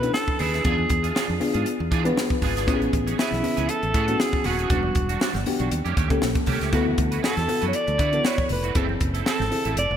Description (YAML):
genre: polished 1980s jazz-funk pop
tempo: 118 BPM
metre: 4/4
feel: swing 54% on 16ths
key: unclear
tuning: A4 = 440 Hz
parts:
  - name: breathy alto saxophone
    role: melody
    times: 0.0-10.0 s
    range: E4 to D5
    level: -26 LUFS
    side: right 1 dB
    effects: digital delay
  - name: bell-like FM electric piano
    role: accompaniment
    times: 0.0-9.8 s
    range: G3 to B4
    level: -27 LUFS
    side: left 3 dB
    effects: lush chorus
  - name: electric guitar at the edge of break-up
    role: riff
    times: 0.0-10.0 s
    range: G3 to B4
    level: -30 LUFS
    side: right 9 dB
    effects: ensemble chorus
  - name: fingered electric bass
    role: bass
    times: 0.0-10.0 s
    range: D#1 to E3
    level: -27 LUFS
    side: equal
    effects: none
  - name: crisp fusion drum kit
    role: drums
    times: 0.0-9.9 s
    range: hi-hat, kick drum, snare drum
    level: -26 LUFS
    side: equal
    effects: none
  - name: congas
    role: percussion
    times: 0.0-10.0 s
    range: none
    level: -39 LUFS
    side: left 1 dB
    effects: none
room: moderate lush hall reverb, RT60 1.9 s, studio reverb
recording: bright 1980s-style digital production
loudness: -20 LUFS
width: side -9 dB against mid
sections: 0.0-10.0 A section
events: none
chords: 0.0 Bm11; 0.6 E7b9; 2.7 Amaj9; 4.7 Em9; 5.7 D#7#11; 6.7 D69; 8.8 F#m7b5